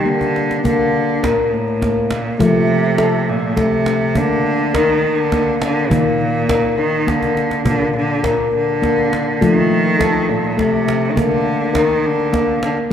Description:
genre	world meditative, meditative tuned percussion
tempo	68 BPM (dotted quarters)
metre	6/8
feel	straight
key	unclear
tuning	A4 = 440 Hz
part	clear cello	melody	0.0-12.8 s	A2 to Eb3	-18 LUFS	right 1 dB	tape echo
part	handpan	arpeggios	0.0-12.9 s	Bb2 to Bb4	-16 LUFS	left 2 dB	tape echo
part	cajon	percussion	0.1-12.8 s	none	-24 LUFS	right 1 dB	none
room	wet echo chamber reverb, RT60 1.8 s, studio reverb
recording	dark, warm production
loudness	-14 LUFS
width	side -8 dB against mid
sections	0.6-12.9 A section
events	drum fill 0.2-0.6, 7.2-7.7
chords	0.0 Gm; 0.6 Bb; 2.4 F; 4.2 Bb; 5.9 Eb5; 7.7 Bb; 9.4 F; 11.2 Bb

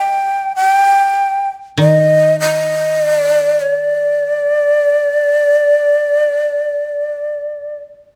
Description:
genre	japanese traditional, Japanese chamber music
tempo	free time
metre	none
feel	none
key	unclear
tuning	A4 = 440 Hz
part	breathy hollow shakuhachi	melody	0.0-7.8 s	D5 to G5	-14 LUFS	equal	none
part	koto	accompaniment	0.0-5.2 s	Eb3 to G3	-20 LUFS	equal	none
room	moderate recital hall reverb, RT60 1.6 s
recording	close, detailed microphones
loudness	-14 LUFS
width	mono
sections	0.0-8.2 A section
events	none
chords	none

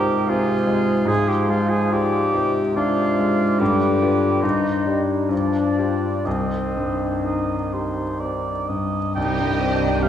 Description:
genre	classical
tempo	60-75 BPM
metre	3/4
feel	rubato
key	C minor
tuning	A4 = 436 Hz
part	clear grand piano	melody	0.0-10.1 s	C2 to C5	-21 LUFS	left 2 dB	none
part	clear clarinet	second line	0.0-10.1 s	C4 to C5	-25 LUFS	equal	none
part	mellow cor anglais	second line	0.0-10.1 s	Ab4 to G5	-29 LUFS	right 3 dB	none
part	silver concert flute	second line	0.0-10.1 s	C5 to G6	-31 LUFS	right 1 dB	none
part	mellow bassoon	accompaniment	0.0-10.1 s	C3 to G3	-27 LUFS	right 1 dB	none
part	rich studio violin section	melody	9.2-10.1 s	D5 to Eb5	-33 LUFS	equal	none
part	warm symphonic violin section	second line	9.2-10.1 s	G4 to Ab4	-32 LUFS	equal	none
part	warm symphonic viola section	accompaniment	9.2-10.1 s	C4 to Eb4	-30 LUFS	right 1 dB	none
part	clear French horn section	sustained chords	9.2-10.1 s	F3 to G3	-28 LUFS	left 2 dB	none
part	dark symphonic double bass section	bass	9.2-10.1 s	C2	-30 LUFS	right 4 dB	none
part	rich symphonic cello section	bass	9.2-10.1 s	C3	-30 LUFS	right 4 dB	none
part	warm tuba	bass	9.2-10.1 s	C2	-30 LUFS	right 2 dB	none
room	wet scoring stage reverb, RT60 1.8 s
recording	recorded in a church or concert hall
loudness	-18 LUFS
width	side -10 dB against mid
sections	0.0-9.2 A section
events	none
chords	0.0 Fm/Ab; 1.1 Dm7b5/Ab; 3.6 G7; 4.4 Cm/G; 5.3 G5; 6.3 Cm

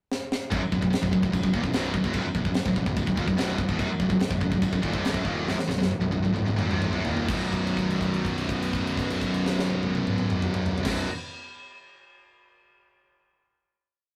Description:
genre	heavy metal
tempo	124-147 BPM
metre	4/4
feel	straight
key	B major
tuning	A4 = 440 Hz
part	tight metal drum kit	drums	0.1-11.0 s	china cymbal, crash cymbal, kick drum, snare drum, toms	-32 LUFS	equal	none
part	brassy analog pad	sustained chords	0.5-11.0 s	D#3 to F#4	-40 LUFS	equal	none
part	high-gain distorted guitar	riff	0.5-11.1 s	B1 to D#3	-31 LUFS	equal	distortion
part	scooped high-gain guitar	riff	0.5-11.1 s	B1 to D#3	-31 LUFS	equal	distortion
part	fuzz picked electric bass	bass	0.5-11.1 s	B0 to E1	-36 LUFS	equal	overdrive
room	light reverb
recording	rough rehearsal-room recording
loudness	-26 LUFS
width	mono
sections	0.0-0.5 pickup bar; 0.5-7.3 riff; 7.3-11.1 final chord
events	drum fill 0.1-0.5, 5.5-7.3; slowing down 3.8-7.3; held note 7.3-10.9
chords	0.0 N.C.; 0.5 B

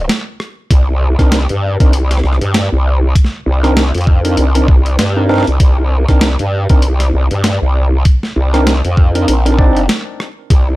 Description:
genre	glitch hop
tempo	98 BPM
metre	4/4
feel	swing 58% on 16ths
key	C minor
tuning	A4 = 440 Hz
part	growl bass	bass	0.0-10.8 s	Bb1 to G2	-12 LUFS	equal	chorus, overdrive
part	boom bap sampler-style drum kit	drums	0.1-10.6 s	hi-hat, rim click, snare drum	-18 LUFS	equal	none
part	electronic kick drum	drums	0.7-10.6 s	none	-8 LUFS	equal	none
part	tine electric piano	stabs	1.2-9.8 s	C4 to D5	-17 LUFS	right 1 dB	vintage 12-bit sampler grit, sidechain pumping, ping-pong delay
room	little or no reverb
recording	dark, warm production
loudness	-10 LUFS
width	side -18 dB against mid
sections	0.0-10.8 A section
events	none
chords	0.0 Cm9

